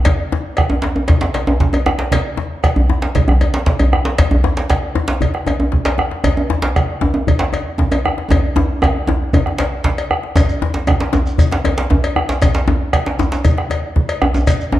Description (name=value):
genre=west african traditional, West African drum ensemble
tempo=116 BPM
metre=4/4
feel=straight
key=none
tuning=none
part: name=djembe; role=percussion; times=0.0-14.8 s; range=none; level=-17 LUFS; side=right 1 dB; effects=none
part: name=bombo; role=percussion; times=0.1-14.6 s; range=none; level=-18 LUFS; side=right 1 dB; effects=none
part: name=cowbell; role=percussion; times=0.1-14.6 s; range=none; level=-24 LUFS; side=left 3 dB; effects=none
part: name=djembe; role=percussion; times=0.1-14.8 s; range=none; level=-21 LUFS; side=left 4 dB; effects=none
part: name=shekere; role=percussion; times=10.4-14.7 s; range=none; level=-28 LUFS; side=right 1 dB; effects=none
room=wet recital hall reverb, RT60 1.5 s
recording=dark, warm production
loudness=-14 LUFS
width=side -14 dB against mid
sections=0.0-10.4 A section; 10.4-14.8 B section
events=drum fill 8.3-10.4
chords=none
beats=| 0.06 0.57 1.09 1.60 | 2.12 2.64 3.15 3.67 | 4.18 4.70 5.22 5.73 | 6.25 6.76 7.28 7.79 | 8.31 8.82 9.34 9.85 | 10.37 10.88 11.39 11.91 | 12.42 12.93 13.45 13.96 | 14.47